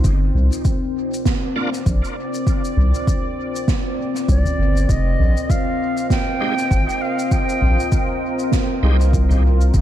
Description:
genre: ambient dub.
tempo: 99 BPM.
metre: 4/4.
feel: swing 58% on 16ths.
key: unclear.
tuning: A4 = 440 Hz.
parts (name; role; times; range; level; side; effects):
deep dark ambient pad; sustained chords; 0.0-9.8 s; C4 to Eb5; -24 LUFS; left 1 dB; chorus, built-in reverb.
round analog bass; bass; 0.0-9.8 s; F1 to C2; -15 LUFS; equal; none.
electronic kick drum; drums; 0.0-9.8 s; none; -19 LUFS; equal; overdrive, small room ambience.
soft-mallet drum kit; drums; 0.0-9.8 s; shaker, snare drum, toms; -28 LUFS; right 2 dB; small room ambience, dub echo.
bright tonewheel organ; stabs; 1.6-1.7, 6.4-9.0 s; Ab3 to G4; -30 LUFS; right 3 dB; overdrive, chorus vibrato, fast rotary speaker, vintage 12-bit sampler grit, dub echo.
silver concert flute; melody; 4.3-8.2 s; D5 to G5; -26 LUFS; right 1 dB; dub echo.
room: studio reverb.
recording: dark, warm production.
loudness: -16 LUFS.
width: side -12 dB against mid.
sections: 0.0-9.8 A section.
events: none.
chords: 0.0 Gm7 (rootless); 4.9 Fm9.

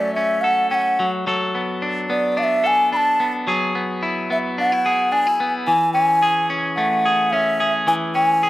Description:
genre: indie pop.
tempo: 109 BPM.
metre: 4/4.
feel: straight.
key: A major.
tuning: A4 = 440 Hz.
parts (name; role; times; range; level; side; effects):
mellow bansuri; melody; 0.0-8.5 s; D5 to B5; -18 LUFS; equal; analog delay.
clean electric guitar; arpeggios; 0.0-8.5 s; E3 to A4; -21 LUFS; left 1 dB; none.
room: moderate studio reverb, RT60 0.7 s.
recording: none.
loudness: -17 LUFS.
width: side -16 dB against mid.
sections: 0.0-5.7 A section; 5.7-8.5 B section.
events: none.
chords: 0.0 F#m; 1.0 D6; 3.5 Eadd9; 5.7 Amaj7.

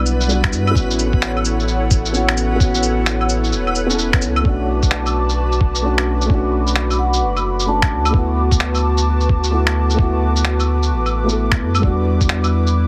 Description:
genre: future garage.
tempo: 130 BPM.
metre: 4/4.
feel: swing 63% on 16ths.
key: B minor.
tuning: A4 = 440 Hz.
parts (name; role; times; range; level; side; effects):
felt-muted upright piano; accompaniment; 0.0-12.9 s; G3 to A4; -24 LUFS; equal; sidechain pumping, delay.
airy breathy pad; sustained chords; 0.0-12.9 s; E4 to D6; -26 LUFS; equal; chorus, sidechain pumping.
soft dub sub bass; bass; 0.0-12.9 s; E1 to G2; -21 LUFS; equal; sidechain pumping.
backwards swelling texture; texture; 0.0-4.5 s; B4; -35 LUFS; equal; built-in reverb.
electronic cabasa, shaker, finger snaps and claves; drums; 0.1-12.7 s; none; -24 LUFS; equal; none.
electronic kick drum; drums; 0.4-12.3 s; none; -19 LUFS; equal; none.
vibraphone with medium mallets; melody; 7.0-8.1 s; F#5 to A5; -28 LUFS; equal; digital delay.
room: little or no reverb.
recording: heavily compressed radio sound.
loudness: -17 LUFS.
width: mono.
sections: 0.0-4.4 A section; 4.4-12.9 B section.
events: none.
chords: 0.0 Em7; 0.8 A6; 4.4 Bm7; 8.1 D6; 11.8 Em7.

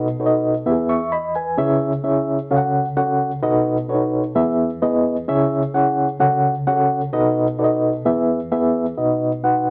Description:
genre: soul.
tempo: 130 BPM.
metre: 4/4.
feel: straight.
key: unclear.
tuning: A4 = 441 Hz.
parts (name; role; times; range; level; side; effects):
mellow reed electric piano; solo; 0.0-9.7 s; B1 to C#6; -19 LUFS; equal; fast tremolo.
room: wet studio reverb, RT60 0.7 s.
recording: none.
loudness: -19 LUFS.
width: mono.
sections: 0.0-9.0 A section.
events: none.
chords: 0.0 B7; 0.7 E; 1.6 C#m; 2.5 F#m/C#; 3.4 B7; 4.4 E; 5.3 C#m; 6.2 F#m/C#; 7.1 B7; 8.0 E; 9.0 B.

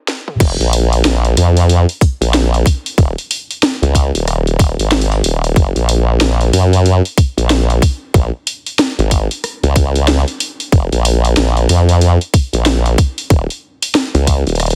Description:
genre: glitch hop.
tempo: 93 BPM.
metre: 4/4.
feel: swing 61% on 16ths.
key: F phrygian.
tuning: A4 = 439 Hz.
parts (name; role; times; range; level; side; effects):
drum and bass drum kit; drums; 0.1-14.8 s; crash cymbal, hi-hat, rim click, snare drum, toms; -20 LUFS; equal; none.
formant-sweep wobble bass; bass; 0.4-14.8 s; Eb1 to Gb2; -14 LUFS; equal; chorus, tube saturation.
electronic kick drum; drums; 0.4-14.4 s; none; -13 LUFS; equal; none.
room: little or no reverb.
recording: heavily compressed radio sound, multiband compression, high-pass filter.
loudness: -14 LUFS.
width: mono.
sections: 0.4-14.8 A section.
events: stop 0.0-0.4; drum fill 0.1-0.4; drop 0.4-14.8.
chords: none.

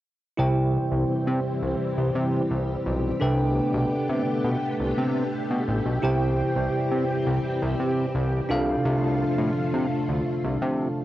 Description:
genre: pop.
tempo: 85 BPM.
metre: 4/4.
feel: straight.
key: C major.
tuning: A4 = 440 Hz.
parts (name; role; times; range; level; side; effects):
bell-like tine electric piano; accompaniment; 0.4-11.0 s; C3 to G5; -26 LUFS; right 1 dB; fast stereo tremolo, cassette tape.
string machine, full ensemble; sustained chords; 0.4-11.0 s; D3 to G4; -28 LUFS; left 1 dB; ensemble chorus, cassette tape.
fat analog bass; bass; 0.4-10.9 s; A1 to C3; -26 LUFS; equal; none.
room: moderate spring reverb, RT60 2.1 s.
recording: home recording on cassette.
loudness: -22 LUFS.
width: side -14 dB against mid.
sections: 0.4-11.0 A section.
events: none.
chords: 0.4 C; 3.2 Gadd9; 6.0 C; 8.5 Dm/C.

